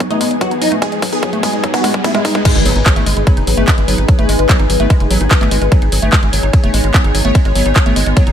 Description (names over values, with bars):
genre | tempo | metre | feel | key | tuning
psychedelic trance | 147 BPM | 4/4 | straight | G# phrygian | A4 = 440 Hz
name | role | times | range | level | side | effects
pulsing gated texture | sustained chords | 0.0-8.3 s | B3 to C#5 | -20 LUFS | left 3 dB | chorus, built-in reverb, sidechain pumping
woody wave-folded pluck | riff | 0.0-8.3 s | F#3 to D#4 | -21 LUFS | right 1 dB | chorus, auto-pan, sidechain pumping, dub echo
drum and bass drum kit | drums | 0.0-8.3 s | crash cymbal, handclaps, hi-hat, ride cymbal | -19 LUFS | equal | none
electronic kick drum | drums | 0.0-8.2 s | none | -13 LUFS | equal | overdrive, high-pass filter on kick
riser and impact | sound effects | 0.0-4.1 s | none | -22 LUFS | equal | none
granular cloud pad | texture | 0.0-8.3 s | D#4 to G#5 | -23 LUFS | right 1 dB | built-in reverb, sidechain pumping
supersaw stab | melody | 0.1-2.4 s | D#4 to G#4 | -19 LUFS | equal | phaser, sidechain pumping, digital delay
tight sequencer bass | bass | 2.6-8.3 s | F#1 to A1 | -15 LUFS | equal | none
vowel-sweep wobble bass | second line | 3.5-5.3 s | F#3 to B3 | -34 LUFS | left 6 dB | none
room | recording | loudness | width
little or no reverb | none | -10 LUFS | side -9 dB against mid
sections
0.0-2.5 A section; 2.5-8.3 B section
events
build-up 0.0-2.5; drum fill 0.0-2.5; riser 0.0-2.5; filter sweep on synth arpeggio sound 0.0-2.5; filter sweep on synth texture 0.0-2.5; drop 2.5-8.3; impact 2.5-4.1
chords
0.0 G#5